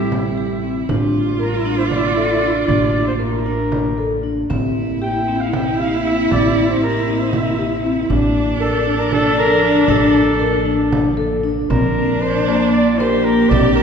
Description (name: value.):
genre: contemporary instrumental, chamber music in an uneven meter.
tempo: 234 BPM (eighths).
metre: 7/8.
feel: straight.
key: unclear.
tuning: A4 = 440 Hz.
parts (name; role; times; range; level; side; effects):
warm flugelhorn; melody; 0.0-13.8 s; G4 to G5; -21 LUFS; equal; none.
warm cello; second line; 0.0-13.8 s; D4 to G4; -21 LUFS; right 2 dB; none.
glassy FM pad; sustained chords; 0.0-13.8 s; F3 to E4; -25 LUFS; left 2 dB; ensemble chorus, built-in reverb.
vibraphone with soft mallets; arpeggios; 0.0-13.8 s; Bb3 to Bb4; -19 LUFS; left 1 dB; none.
upright bass; bass; 0.0-13.8 s; A1 to Bb1; -23 LUFS; right 1 dB; none.
frame drum; percussion; 0.1-13.8 s; none; -27 LUFS; right 2 dB; none.
room: wet concert hall reverb, RT60 2.6 s.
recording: recorded in a church or concert hall.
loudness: -14 LUFS.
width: side -6 dB against mid.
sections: 0.0-11.7 A section; 11.7-13.8 B section.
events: none.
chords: 0.0 Am7; 0.9 Bbmaj7/A; 4.5 C7/A; 8.1 Bbmaj7/A; 11.7 Bbadd9.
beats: 0.12 0.38 0.64 | 0.89 1.15 1.40 1.66 1.91 2.17 2.42 | 2.68 2.94 3.20 3.46 3.72 3.98 4.24 | 4.50 4.76 5.02 5.28 5.54 5.79 6.05 | 6.31 6.57 6.82 7.08 7.33 7.59 7.84 | 8.10 8.36 8.61 8.87 9.12 9.38 9.63 | 9.88 10.14 10.40 10.66 10.92 11.18 11.44 | 11.71 11.97 12.23 12.49 12.74 13.00 13.26 | 13.51 13.77.